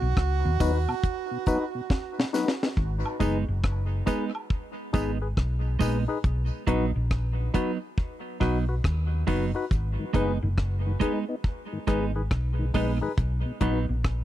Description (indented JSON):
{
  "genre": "dub reggae",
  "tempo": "69 BPM",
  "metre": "4/4",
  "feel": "swing 64% on 16ths",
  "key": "G# minor",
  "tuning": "A4 = 440 Hz",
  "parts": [
    { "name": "bright tenor saxophone", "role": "second line", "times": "0.0-2.3 s", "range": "F#4", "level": "-33 LUFS", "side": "right 12 dB", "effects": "dub echo" },
    { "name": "mellow tonewheel organ", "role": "accompaniment", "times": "0.0-2.7, 10.0-14.0 s", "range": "G#2 to D#4", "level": "-34 LUFS", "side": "left 2 dB", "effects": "overdrive, chorus vibrato, slow rotary speaker" },
    { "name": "hollow-body short-scale fingered electric bass", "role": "bass", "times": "0.0-14.2 s", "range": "F#1 to D#2", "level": "-26 LUFS", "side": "equal", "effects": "none" },
    { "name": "deep reggae drum kit", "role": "drums", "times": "0.2-14.2 s", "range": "hi-hat, kick drum, rim click, snare drum", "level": "-26 LUFS", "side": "equal", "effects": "none" },
    { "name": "percussive organ stab", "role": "stabs", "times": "0.6-13.8 s", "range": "D#4 to B4", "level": "-32 LUFS", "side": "left 4 dB", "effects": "chorus, dub echo" },
    { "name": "tambourine and woodblock", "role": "percussion", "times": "0.6-6.1 s", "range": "none", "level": "-40 LUFS", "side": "right 2 dB", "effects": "dub echo" },
    { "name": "clean electric guitar", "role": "accompaniment", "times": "3.2-13.9 s", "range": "F#3 to D#4", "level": "-32 LUFS", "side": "right 8 dB", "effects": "dub echo" }
  ],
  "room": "studio ambience",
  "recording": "dry, close 1970s-style studio recording",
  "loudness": "-24 LUFS",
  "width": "side -13 dB against mid",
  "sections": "0.0-2.8 A section; 2.8-14.2 B section",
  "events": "break 0.0-2.8; drum fill 1.9-2.8; part muted 6.2-14.2",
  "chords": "0.0 B; 2.8 G#m; 6.2 B; 9.7 G#m; 13.2 B",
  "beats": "0.17 1.04 1.90 | 2.77 3.64 4.50 5.37 | 6.24 7.11 7.97 8.84 | 9.71 10.57 11.44 12.31 | 13.18 14.05"
}